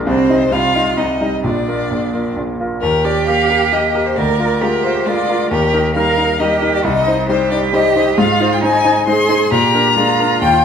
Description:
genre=quick classical-period movement for piano trio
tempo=134 BPM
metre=3/4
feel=straight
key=Eb major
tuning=A4 = 444 Hz
part: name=clear grand piano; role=accompaniment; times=0.0-10.6 s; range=Bb1 to Eb5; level=-17 LUFS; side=equal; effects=none
part: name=rich violin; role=melody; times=0.1-10.6 s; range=Bb4 to C6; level=-17 LUFS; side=left 6 dB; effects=none
part: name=rich cello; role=second line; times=0.1-10.6 s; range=C4 to Bb4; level=-18 LUFS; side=right 7 dB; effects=none
room=moderate recital hall reverb, RT60 1.4 s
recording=none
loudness=-13 LUFS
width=side -7 dB against mid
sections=0.0-2.8 A section; 2.8-10.6 B section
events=none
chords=0.1 Cm; 1.4 Bb; 2.8 Eb; 4.2 Bb7/D; 5.5 Eb; 6.8 Cm; 8.2 Ab; 9.5 Bb7

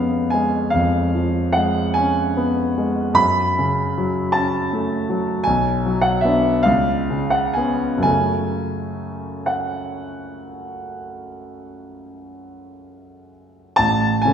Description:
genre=classical, romantic nocturne for solo piano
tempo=39-55 BPM (dotted quarters)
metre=12/8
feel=rubato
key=F# minor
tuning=A4 = 440 Hz
part: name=clear concert grand piano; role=solo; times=0.0-14.3 s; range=A1 to B5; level=-18 LUFS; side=equal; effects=none
room=wet scoring stage reverb, RT60 1.6 s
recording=recorded in a church or concert hall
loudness=-17 LUFS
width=side -8 dB against mid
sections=0.0-13.8 A section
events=none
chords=0.0 C#7/E#; 3.2 F#m; 5.5 Bm; 6.7 C#7; 8.1 F#m; 13.8 A

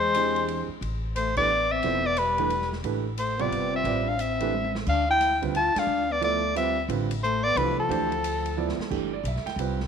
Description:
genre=modal jazz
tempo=178 BPM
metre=3/4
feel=swing 63% on 8ths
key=A minor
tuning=A4 = 439 Hz
part: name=clear soprano saxophone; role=melody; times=0.0-8.8 s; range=A4 to A5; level=-25 LUFS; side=equal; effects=none
part: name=mellow trombone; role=second line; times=0.0-8.7 s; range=F3 to F4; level=-32 LUFS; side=left 11 dB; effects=none
part: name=upright bass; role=bass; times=0.0-9.9 s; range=E1 to E2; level=-32 LUFS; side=equal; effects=none
part: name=open jazz drum kit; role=drums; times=0.1-9.9 s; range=crash cymbal, hi-hat, kick drum, ride cymbal, snare drum, toms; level=-38 LUFS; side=right 1 dB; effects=none
part: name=warm baby grand piano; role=accompaniment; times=0.2-9.9 s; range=C3 to G5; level=-31 LUFS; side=right 11 dB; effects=none
room=moderate echo chamber reverb, RT60 1.7 s, studio ambience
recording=1960s-style stereo with parts hard left and right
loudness=-23 LUFS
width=side -7 dB against mid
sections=0.8-8.9 A section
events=band accent 1.3, 5.7; drum fill 4.5-4.9, 8.6-8.9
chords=0.0 E7alt; 0.8 Am9; 4.9 Dm9; 8.9 D9sus4

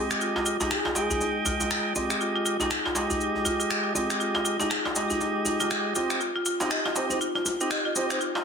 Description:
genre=afro house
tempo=120 BPM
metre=4/4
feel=swing 59% on 16ths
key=F minor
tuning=A4 = 441 Hz
part: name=breathy bass bansuri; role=melody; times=0.0-1.4, 6.7-8.2 s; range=Ab4 to Eb5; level=-34 LUFS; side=equal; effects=low-pass filter, ping-pong delay
part: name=buzzing marimba with hard mallets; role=arpeggios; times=0.0-8.4 s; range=C4 to Ab4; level=-30 LUFS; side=left 1 dB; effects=low-pass filter, ping-pong delay
part: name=tonewheel organ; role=stabs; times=0.0-8.2 s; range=Ab3 to G5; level=-29 LUFS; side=right 1 dB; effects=overdrive, ping-pong delay
part: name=electronic finger snaps and shaker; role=drums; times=0.1-8.3 s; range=none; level=-29 LUFS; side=equal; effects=soft clipping on snare
part: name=djembe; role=percussion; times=0.4-8.4 s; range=none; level=-32 LUFS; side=right 1 dB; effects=none
room=moderate plate reverb, RT60 0.9 s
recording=dense, heavily limited modern master, high-pass filter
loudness=-24 LUFS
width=side -6 dB against mid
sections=0.0-8.4 A section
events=build-up 0.0-8.4; filter sweep on bansuri 0.0-8.4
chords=0.0 Fm9; 6.2 Cm

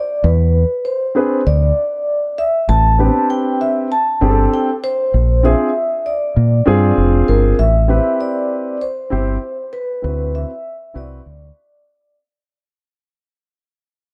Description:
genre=hip hop, jazz-hop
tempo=98 BPM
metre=4/4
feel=swing 64% on 16ths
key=A minor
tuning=A4 = 440 Hz
part: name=vibraphone with soft mallets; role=melody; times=0.0-12.1 s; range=Bb4 to A5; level=-21 LUFS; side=equal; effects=none
part: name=deep dub fingered electric bass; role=bass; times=0.2-11.5 s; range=F1 to Bb2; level=-16 LUFS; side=equal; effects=none
part: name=dark baby grand piano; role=accompaniment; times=1.1-11.2 s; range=B3 to C5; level=-20 LUFS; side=equal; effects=none
room=light reverb, small room ambience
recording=dark, warm production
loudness=-16 LUFS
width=mono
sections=0.0-7.6 A section; 7.6-12.5 B section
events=fade-out 7.6-12.5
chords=0.2 E7b13; 2.7 Am11; 5.1 Bb9; 7.6 Am9; 10.0 D13

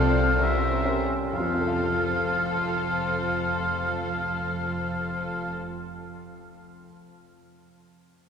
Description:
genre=classical, romantic movement for piano and orchestra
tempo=65 BPM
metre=3/4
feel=rubato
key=F major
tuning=A4 = 440 Hz
part: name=clear baby grand piano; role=melody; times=0.0-6.9 s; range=C2 to F5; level=-30 LUFS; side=left 1 dB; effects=none
part: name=warm studio violin section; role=melody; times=0.0-5.5 s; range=C5 to D5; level=-37 LUFS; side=left 4 dB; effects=none
part: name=clear oboe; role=second line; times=0.0-5.5 s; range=E5 to F5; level=-28 LUFS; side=equal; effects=none
part: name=rich studio violin section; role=second line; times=0.0-5.5 s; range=A4 to C5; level=-36 LUFS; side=left 2 dB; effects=none
part: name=warm studio viola section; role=accompaniment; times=0.0-5.5 s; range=F3 to F4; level=-37 LUFS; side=right 1 dB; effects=none
part: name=dark studio double bass section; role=bass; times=0.0-5.5 s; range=F1 to C2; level=-32 LUFS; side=right 2 dB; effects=none
part: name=warm studio cello section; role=bass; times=0.0-5.5 s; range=F2 to C3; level=-33 LUFS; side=right 1 dB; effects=none
part: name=timpani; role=percussion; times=1.3-5.5 s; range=none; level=barely audible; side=none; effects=none
room=wet cathedral reverb, RT60 5.3 s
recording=recorded in a church or concert hall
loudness=-24 LUFS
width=side -7 dB against mid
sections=0.0-1.3 A section; 1.3-6.8 B section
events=slowing down 0.0-1.3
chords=0.4 C7b9; 1.3 F

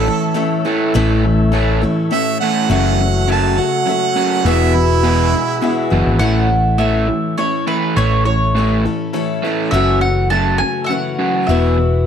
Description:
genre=rock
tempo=102 BPM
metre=3/4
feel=straight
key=A major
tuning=A4 = 439 Hz
part: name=warm harmonica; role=second line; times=0.0-5.9 s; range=E4 to A5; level=-19 LUFS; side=right 9 dB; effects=slapback echo
part: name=bright concert grand piano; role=accompaniment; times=0.0-12.0 s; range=E4 to E5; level=-27 LUFS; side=left 10 dB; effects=none
part: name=picked acoustic archtop guitar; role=accompaniment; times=0.0-12.1 s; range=F#2 to A4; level=-21 LUFS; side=left 5 dB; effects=none
part: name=tonewheel organ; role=sustained chords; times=0.0-6.2 s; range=E4 to E5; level=-26 LUFS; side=equal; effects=slow rotary speaker
part: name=crunchy overdriven guitar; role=riff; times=0.0-12.0 s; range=E2 to A3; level=-19 LUFS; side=right 1 dB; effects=none
part: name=hollow-body short-scale fingered electric bass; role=bass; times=0.0-12.1 s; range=E1 to A1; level=-16 LUFS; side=equal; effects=none
part: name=mandolin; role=melody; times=6.2-12.0 s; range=B4 to A5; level=-19 LUFS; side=right 2 dB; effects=none
room=moderate large studio reverb, RT60 1.2 s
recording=none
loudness=-13 LUFS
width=side -8 dB against mid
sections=0.0-6.2 A section; 6.2-12.1 B section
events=harmonica solo 0.0-6.2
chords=0.0 A; 2.7 F#m7; 4.5 Eadd9; 6.2 A; 9.7 F#m7; 11.5 Esus2

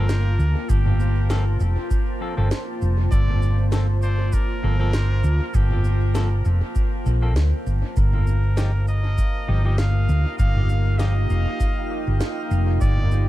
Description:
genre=ambient dub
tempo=99 BPM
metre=4/4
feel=swing 55% on 16ths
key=G minor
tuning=A4 = 440 Hz
part: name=trumpet with straight mute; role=melody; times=0.0-13.3 s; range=G4 to F5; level=-33 LUFS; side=equal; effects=dub echo
part: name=deep dark ambient pad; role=sustained chords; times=0.0-13.3 s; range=Bb3 to A5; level=-30 LUFS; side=right 1 dB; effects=chorus, built-in reverb
part: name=semi-hollow electric guitar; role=stabs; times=0.0-11.1 s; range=F3 to A4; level=-36 LUFS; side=left 2 dB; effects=dub echo
part: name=hollow-body short-scale fingered electric bass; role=bass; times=0.0-13.3 s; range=F1 to D2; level=-19 LUFS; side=equal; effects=none
part: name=organic electronic drum kit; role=drums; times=0.1-13.2 s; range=cabasa, snare drum, toms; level=-32 LUFS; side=equal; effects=overdrive, dub echo
part: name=electronic kick drum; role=drums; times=0.7-12.9 s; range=none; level=-22 LUFS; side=equal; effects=none
part: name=backwards swelling texture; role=texture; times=8.6-13.3 s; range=F5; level=-38 LUFS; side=equal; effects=built-in reverb
room=little or no reverb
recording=echo-heavy mix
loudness=-18 LUFS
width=side -16 dB against mid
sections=0.0-13.3 A section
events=none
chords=0.0 Gm11; 8.0 Ebadd9

